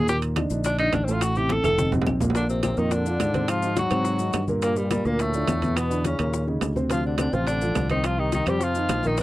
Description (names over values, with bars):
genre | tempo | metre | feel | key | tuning
Afro-Cuban jazz | 211 BPM | 4/4 | straight | Bb major | A4 = 440 Hz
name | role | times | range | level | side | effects
clear tenor saxophone | melody | 0.0-9.2 s | G3 to A4 | -27 LUFS | equal | none
dark upright piano | accompaniment | 0.0-9.2 s | A2 to C5 | -27 LUFS | right 1 dB | none
fingered electric bass | bass | 0.0-9.2 s | F1 to Ab2 | -26 LUFS | equal | none
bongos | percussion | 0.1-9.2 s | none | -32 LUFS | left 6 dB | none
congas | percussion | 0.1-9.2 s | none | -33 LUFS | left 1 dB | none
maracas | percussion | 0.1-9.2 s | none | -41 LUFS | left 12 dB | none
timbales | percussion | 0.2-9.2 s | none | -32 LUFS | right 6 dB | none
claves | percussion | 0.4-9.0 s | none | -37 LUFS | right 3 dB | none
growling trombone | second line | 2.4-9.2 s | G2 to G3 | -31 LUFS | left 4 dB | none
room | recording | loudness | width
light reverb | dry, close 1970s-style studio recording | -21 LUFS | side -16 dB against mid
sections
0.0-2.4 A section; 2.4-9.2 B section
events
tenor saxophone solo 0.0-2.4; drum fill 1.5-2.4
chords
0.1 Eb5; 1.2 Am; 1.8 F5; 2.4 Bbadd9; 3.5 Ab13; 4.6 Gm9; 5.8 E5; 6.3 Eb5; 6.9 Dm7; 8.0 Cm; 8.6 F5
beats
| 0.08 0.37 0.65 0.93 | 1.22 1.50 1.78 2.07 | 2.35 2.63 2.92 3.20 | 3.49 3.77 4.05 4.34 | 4.62 4.91 5.19 5.48 | 5.76 6.05 6.33 6.62 | 6.90 7.18 7.47 7.75 | 8.04 8.32 8.61 8.89 | 9.18